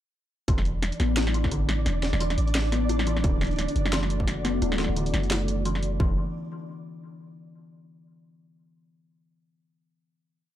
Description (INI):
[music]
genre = half-time drum and bass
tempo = 174 BPM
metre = 4/4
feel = swing 57% on 16ths, half-time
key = unclear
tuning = A4 = 439 Hz
[part]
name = kalimba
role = arpeggios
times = 0.5-6.2 s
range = D3 to E4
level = -31 LUFS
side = left 3 dB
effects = analog delay
[part]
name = long sustained 808-style bass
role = bass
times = 0.5-6.2 s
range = D1 to A1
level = -26 LUFS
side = equal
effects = none
[part]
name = drum and bass drum kit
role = drums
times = 0.5-5.9 s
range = hi-hat, snare drum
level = -30 LUFS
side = equal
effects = none
[part]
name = electronic kick drum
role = drums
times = 0.5-6.1 s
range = none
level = -26 LUFS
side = equal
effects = distortion
[part]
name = flickering grainy texture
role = texture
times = 0.7-6.0 s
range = D4 to D5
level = -35 LUFS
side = right 3 dB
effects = built-in reverb
[part]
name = dark analog pad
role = sustained chords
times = 3.6-6.2 s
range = A3 to D5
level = -35 LUFS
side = right 2 dB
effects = chorus, vintage 12-bit sampler grit, sidechain pumping
[sound]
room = light reverb, digital ambience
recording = dry, gritty hardware recording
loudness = -23 LUFS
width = side -12 dB against mid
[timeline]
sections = 0.5-6.0 drop; 6.0-7.4 final chord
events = drop 0.5-6.0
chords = 0.5 E5; 3.2 D; 6.0 Em